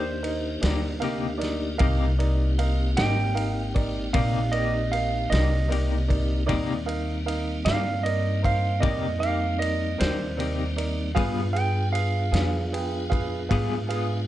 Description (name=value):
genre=slow blues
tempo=51 BPM (dotted quarters)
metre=12/8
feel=straight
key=C minor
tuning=A4 = 440 Hz
part: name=clean lap steel guitar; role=second line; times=0.0-14.2 s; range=C5 to G5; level=-29 LUFS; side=right 5 dB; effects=plate reverb
part: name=clean electric guitar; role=accompaniment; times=0.0-14.1 s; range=C3 to Ab4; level=-32 LUFS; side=left 6 dB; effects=tremolo, plate reverb
part: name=clear upright piano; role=accompaniment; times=0.0-14.2 s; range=Eb4 to G5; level=-32 LUFS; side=right 5 dB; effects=plate reverb
part: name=tonewheel organ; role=sustained chords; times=0.0-14.3 s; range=G3 to Ab4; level=-33 LUFS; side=left 1 dB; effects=chorus vibrato, slow rotary speaker, plate reverb
part: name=upright bass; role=bass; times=0.0-14.3 s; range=Ab1 to Ab2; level=-26 LUFS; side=equal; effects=none
part: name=natural country drum kit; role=drums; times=0.2-14.1 s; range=kick drum, ride cymbal, snare drum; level=-30 LUFS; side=equal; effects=none
room=light reverb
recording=dark, warm production, nothing above 10.4 kHz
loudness=-22 LUFS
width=side -13 dB against mid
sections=0.0-14.3 A section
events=electric slide guitar solo 0.0-14.3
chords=0.0 Cm7; 11.2 G7b9